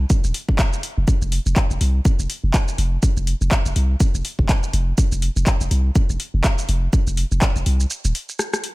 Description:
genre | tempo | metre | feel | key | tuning
minimal techno | 123 BPM | 4/4 | swing 58% on 16ths | unclear | A4 = 440 Hz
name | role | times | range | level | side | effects
punchy sub bass | bass | 0.0-8.1 s | Eb1 to C2 | -19 LUFS | equal | sidechain pumping
booming analog drum machine | drums | 0.1-8.7 s | handclaps, hi-hat, rim click, shaker | -26 LUFS | equal | none
electronic kick drum | drums | 0.1-7.5 s | none | -18 LUFS | equal | none
room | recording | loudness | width
little or no reverb | none | -17 LUFS | side -21 dB against mid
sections
0.0-8.7 A section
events
break 7.9-8.7; drum fill 8.4-8.7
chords
none

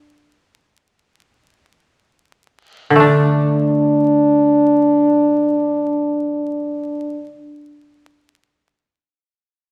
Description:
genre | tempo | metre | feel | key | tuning
japanese traditional, Japanese chamber music | free time | none | none | unclear | A4 = 440 Hz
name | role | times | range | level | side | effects
koto | accompaniment | 2.9-7.5 s | D3 to D4 | -18 LUFS | equal | none
dark French horn | melody | 3.0-7.5 s | D4 | -18 LUFS | equal | none
room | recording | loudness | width
moderate recital hall reverb, RT60 1.4 s | vinyl crackle | -16 LUFS | mono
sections
0.0-3.0 A section; 3.0-9.7 B section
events
slowing down 0.0-3.0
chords
none

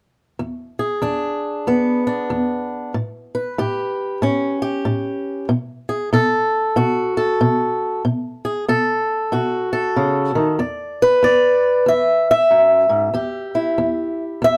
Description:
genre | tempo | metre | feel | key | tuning
acoustic country blues, solo or duo | 94 BPM | 4/4 | swing 62% on 8ths | unclear | A4 = 440 Hz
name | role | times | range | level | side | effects
fingerpicked swing-style acoustic guitar | solo | 0.4-14.6 s | E2 to E5 | -19 LUFS | equal | none
room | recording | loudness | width
light reverb | none | -19 LUFS | mono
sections
0.4-10.6 A section; 10.6-14.6 B section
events
none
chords
0.4 E7; 2.9 A7; 5.5 B7(no3); 10.6 E7(no3); 13.1 Em

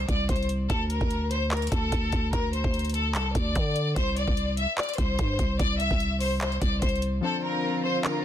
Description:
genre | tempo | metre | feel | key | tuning
hip hop, trap | 147 BPM | 4/4 | half-time | D minor | A4 = 444 Hz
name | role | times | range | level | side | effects
clear studio violin section | melody | 0.0-8.2 s | A4 to E5 | -29 LUFS | left 2 dB | low-pass filter
growling 808-style bass | bass | 0.0-7.2 s | C2 to D3 | -28 LUFS | equal | none
trap drum kit | drums | 0.1-8.1 s | handclaps, hi-hat, kick drum | -28 LUFS | equal | none
warbly lo-fi synth keys | accompaniment | 7.2-8.2 s | F3 to C5 | -30 LUFS | left 6 dB | chorus, low-pass filter
warm studio string section | sustained chords | 7.2-8.2 s | D3 to F4 | -31 LUFS | right 1 dB | none
room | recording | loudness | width
digital ambience | dense, heavily limited modern master | -24 LUFS | side -11 dB against mid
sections
0.0-8.2 A section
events
hi-hats muted 7.2-8.2; kick muted 7.2-8.0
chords
0.0 Csus2; 0.7 D5; 4.0 Csus2; 7.2 Dm7

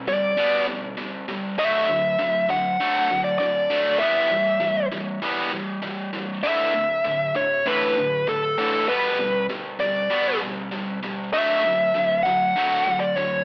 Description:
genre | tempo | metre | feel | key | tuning
rock | 98 BPM | 4/4 | straight | unclear | A4 = 439 Hz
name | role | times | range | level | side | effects
high-gain distorted guitar | riff | 0.0-13.4 s | A2 to B3 | -26 LUFS | equal | distortion, cassette tape
dark smooth lead guitar | melody | 0.1-13.4 s | A4 to F#5 | -20 LUFS | equal | overdrive, cassette tape, tape echo
room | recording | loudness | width
moderate spring reverb, RT60 1.2 s, digital ambience | home recording on cassette, AM radio sound | -20 LUFS | side -36 dB against mid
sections
0.0-13.4 A section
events
none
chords
0.0 G/B; 1.6 Dadd9; 4.0 Em; 6.4 Asus4; 8.9 G/B; 11.3 Dadd9

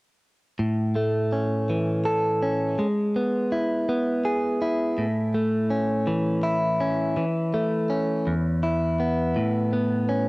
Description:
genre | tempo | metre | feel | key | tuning
pop | 55 BPM (dotted quarters) | 6/8 | straight | A major | A4 = 439 Hz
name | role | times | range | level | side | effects
direct-recorded clean electric guitar | accompaniment | 0.6-10.3 s | E2 to A4 | -22 LUFS | equal | cassette tape
room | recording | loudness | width
moderate spring reverb, RT60 2.3 s | home recording on cassette | -22 LUFS | side -23 dB against mid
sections
0.6-10.3 A section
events
none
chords
0.6 A; 2.8 E/G#; 5.0 A; 7.2 A/E; 8.3 E5; 9.4 Aadd9

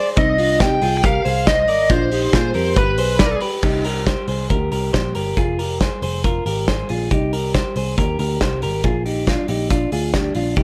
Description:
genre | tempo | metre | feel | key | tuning
jangly indie pop | 138 BPM | 4/4 | straight | C minor | A4 = 440 Hz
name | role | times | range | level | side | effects
bluesy overdriven lead guitar | melody | 0.0-3.4 s | B4 to G5 | -22 LUFS | equal | distortion
clean electric guitar | arpeggios | 0.0-10.6 s | C4 to Eb5 | -24 LUFS | equal | none
vintage muted picked electric bass | bass | 0.2-10.6 s | F1 to C3 | -26 LUFS | equal | none
loose indie drum kit | drums | 0.2-10.6 s | crash cymbal, hi-hat, kick drum, snare drum | -23 LUFS | equal | none
room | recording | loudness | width
light reverb, studio reverb | none | -19 LUFS | mono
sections
0.0-3.6 A section; 3.6-10.6 B section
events
none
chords
0.2 Cmadd9; 1.9 Bbadd9; 2.8 G; 3.6 Cm; 5.4 Fm; 7.1 Cm; 8.8 Bb

